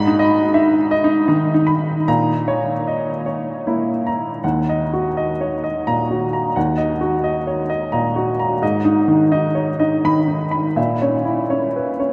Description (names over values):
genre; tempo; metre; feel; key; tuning
neoclassical minimalist piano; 74-89 BPM; 3/4; rubato; unclear; A4 = 441 Hz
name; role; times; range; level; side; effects
clear upright piano; solo; 0.0-12.1 s; D#2 to B5; -19 LUFS; equal; none
room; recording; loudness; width
wet huge ambient reverb, RT60 7.9 s; in a vast, echoing space; -19 LUFS; mono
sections
0.0-4.4 A section; 4.4-12.1 B section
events
none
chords
0.0 G#m; 2.1 A#dim; 4.4 D#m; 8.6 G#m; 10.8 A#dim